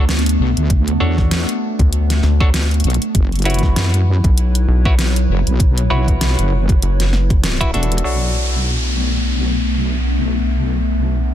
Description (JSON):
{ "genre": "glitch hop", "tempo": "98 BPM", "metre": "4/4", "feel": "swing 57% on 16ths", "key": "B minor", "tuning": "A4 = 439 Hz", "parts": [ { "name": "warbly tape-like pad", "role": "sustained chords", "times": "0.0-11.3 s", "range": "F#3 to C#5", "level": "-23 LUFS", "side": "left 1 dB", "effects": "chorus, built-in reverb, phaser, sidechain pumping" }, { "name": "bright clav", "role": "stabs", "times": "0.0-11.3 s", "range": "D4 to E5", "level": "-25 LUFS", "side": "equal", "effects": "sidechain pumping, low-pass filter, ping-pong delay" }, { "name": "rubbery square bass", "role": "bass", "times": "0.0-7.7 s", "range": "F#1 to D2", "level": "-15 LUFS", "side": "equal", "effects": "none" }, { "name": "pop drum kit", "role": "drums", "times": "0.1-8.1 s", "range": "hi-hat, snare drum", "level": "-23 LUFS", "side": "equal", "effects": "overdrive" }, { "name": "wobble bass", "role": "bass", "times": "0.4-11.3 s", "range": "E1 to F#2", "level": "-17 LUFS", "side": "equal", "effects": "chorus" }, { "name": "electronic kick drum", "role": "drums", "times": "0.7-7.7 s", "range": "none", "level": "-15 LUFS", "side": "equal", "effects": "overdrive" }, { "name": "downlifter", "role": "sound effects", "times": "8.0-11.3 s", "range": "none", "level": "-25 LUFS", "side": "equal", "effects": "none" } ], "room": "little or no reverb", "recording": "dense, heavily limited modern master", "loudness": "-14 LUFS", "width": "side -11 dB against mid", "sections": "0.0-8.0 A section; 8.0-11.3 B section", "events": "band accent 7.4-7.7; drum fill 7.7-8.0", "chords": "0.0 Bm7; 3.1 F#7sus4; 8.0 Bm7", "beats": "0.09 | 0.70 1.31 1.92 2.54 | 3.15 3.76 4.37 4.99 | 5.60 6.21 6.82 7.43 | 8.05 8.66 9.27 9.88 | 10.49 11.11" }